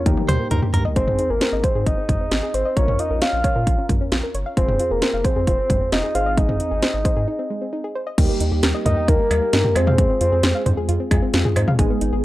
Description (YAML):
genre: synth-pop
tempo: 133 BPM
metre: 4/4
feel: straight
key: Eb mixolydian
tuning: A4 = 440 Hz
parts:
  - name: soft octave-layered synth lead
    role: melody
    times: 0.0-10.6 s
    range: Bb4 to F5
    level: -22 LUFS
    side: equal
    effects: chorus, analog delay
  - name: soft electric-piano-like synth keys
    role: accompaniment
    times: 0.0-12.2 s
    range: G3 to Bb4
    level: -28 LUFS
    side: equal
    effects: chorus, phaser
  - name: soft round pluck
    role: arpeggios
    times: 0.1-12.2 s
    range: G3 to F5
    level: -28 LUFS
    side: equal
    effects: chorus, analog delay
  - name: round analog bass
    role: bass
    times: 0.1-12.2 s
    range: F1 to Bb2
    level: -23 LUFS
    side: equal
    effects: none
  - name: house drum kit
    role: drums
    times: 0.1-12.1 s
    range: cowbell, crash cymbal, hi-hat, kick drum, snare drum, toms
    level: -20 LUFS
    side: equal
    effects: none
  - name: direct-recorded clean electric guitar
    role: second line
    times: 0.3-0.8 s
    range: Bb4 to C5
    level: -26 LUFS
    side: right 1 dB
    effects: analog delay
room: light reverb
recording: dry, gritty hardware recording, transformer saturation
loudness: -17 LUFS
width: side -16 dB against mid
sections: 1.0-8.2 A section; 8.2-12.2 B section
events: drum fill 0.1-1.0; break 7.3-8.2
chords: 0.1 Eb; 1.0 Ab; 2.8 Bbm; 4.6 Fm; 6.2 Ab; 8.2 Eb; 9.8 Fm